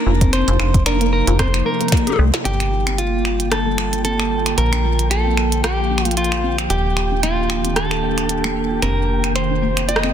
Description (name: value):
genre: IDM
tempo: 113 BPM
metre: 4/4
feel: swing 56% on 16ths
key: unclear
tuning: A4 = 440 Hz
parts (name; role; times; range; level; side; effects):
- clean electric guitar; melody; 0.0-10.1 s; F4 to Eb5; -22 LUFS; equal; digital delay
- warbly tape-like pad; sustained chords; 0.0-10.1 s; C3 to G4; -23 LUFS; right 2 dB; chorus, built-in reverb, phaser, sidechain pumping
- deep acid bass; arpeggios; 0.1-10.1 s; A3 to F4; -27 LUFS; left 3 dB; wide subtle chorus, digital delay
- metallic FM bass; bass; 0.1-10.1 s; Eb1 to C2; -20 LUFS; equal; none
- electronic kick drum; drums; 0.2-2.0 s; none; -17 LUFS; equal; overdrive
- glitchy drum kit; drums; 0.2-10.1 s; finger snaps, hi-hat, rim click, snare drum, toms; -23 LUFS; equal; overdrive, soft clipping on snare
- flickering grainy texture; texture; 3.3-10.1 s; G5; -30 LUFS; right 2 dB; built-in reverb, sidechain pumping
room: light reverb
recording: dense, heavily limited modern master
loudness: -16 LUFS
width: side -9 dB against mid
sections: 0.0-2.5 A section; 2.5-10.1 B section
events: drum fill 1.9-2.5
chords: 0.3 F7sus4; 2.5 Gm7; 4.6 Bbmaj7; 6.7 Ebmaj7; 8.8 F7sus4